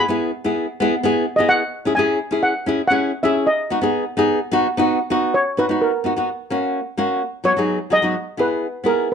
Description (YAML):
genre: calypso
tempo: 128 BPM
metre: 4/4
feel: straight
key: B major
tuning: A4 = 440 Hz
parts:
  - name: steel pan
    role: melody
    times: 0.0-9.1 s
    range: A#4 to B5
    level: -19 LUFS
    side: equal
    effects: none
  - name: flamenco guitar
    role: accompaniment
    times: 0.0-9.1 s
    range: F#3 to G#4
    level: -19 LUFS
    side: left 1 dB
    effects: none
room: moderate studio reverb, RT60 0.6 s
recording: dark, warm production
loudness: -17 LUFS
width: side -7 dB against mid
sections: 0.0-5.3 A section; 5.3-9.1 B section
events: steel pan solo 5.3-9.1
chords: 0.0 E; 1.6 C#m; 3.5 B; 5.3 Bmaj7; 6.3 F#; 7.2 B/F#; 8.1 E